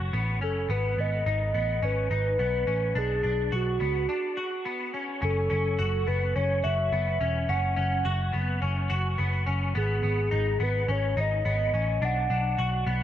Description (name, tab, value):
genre	dream pop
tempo	106 BPM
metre	4/4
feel	straight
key	F# minor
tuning	A4 = 440 Hz
part	semi-hollow electric guitar	arpeggios	0.0-13.0 s	B3 to F#4	-31 LUFS	left 2 dB	ensemble chorus, digital delay
part	vintage muted picked electric bass	bass	0.0-13.0 s	E1 to C#2	-28 LUFS	equal	none
part	warbly nostalgic lead	melody	0.4-13.0 s	F#4 to F#5	-29 LUFS	equal	chorus, digital delay
room	light reverb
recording	dark, warm production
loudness	-24 LUFS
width	side -11 dB against mid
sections	0.0-5.2 A section; 5.2-13.0 B section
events	break 4.1-5.2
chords	0.0 F#m; 0.7 G#m; 3.0 Bm; 5.2 F#5; 9.8 G#m; 12.0 Bm